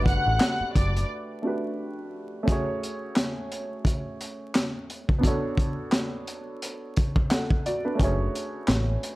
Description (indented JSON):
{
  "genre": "hip hop, boom-bap hip-hop",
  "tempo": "87 BPM",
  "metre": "4/4",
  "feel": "swing 58% on 16ths",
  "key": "F# minor",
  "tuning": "A4 = 440 Hz",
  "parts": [
    { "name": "warm studio violin section", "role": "melody", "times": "0.0-1.1 s", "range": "D5 to F#6", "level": "-27 LUFS", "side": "left 1 dB", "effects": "high-pass filter, low-pass filter, analog delay" },
    { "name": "warm upright piano", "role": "accompaniment", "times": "0.0-9.2 s", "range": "A3 to F#5", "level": "-31 LUFS", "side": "right 1 dB", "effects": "high-pass filter, low-pass filter" },
    { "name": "deep dub picked electric bass", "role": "bass", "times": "0.0-1.0, 8.0-9.0 s", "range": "F#1 to A1", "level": "-26 LUFS", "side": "equal", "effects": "none" },
    { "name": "crunchy breakbeat drum kit", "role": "drums", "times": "0.1-9.2 s", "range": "handclaps, hi-hat, kick drum, snare drum", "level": "-24 LUFS", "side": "equal", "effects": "none" }
  ],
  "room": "small room ambience",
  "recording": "dry, gritty hardware recording, transformer saturation, vinyl crackle",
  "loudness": "-24 LUFS",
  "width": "side -19 dB against mid",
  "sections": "0.0-2.5 A section; 2.5-9.2 B section",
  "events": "break 1.1-2.5",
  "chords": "0.0 Gmaj7; 2.5 F#madd9; 5.2 Bm7; 8.0 F#madd9",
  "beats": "0.41 1.10 1.79 | 2.48 3.17 3.86 4.55 | 5.24 5.92 6.61 7.30 | 7.99 8.68"
}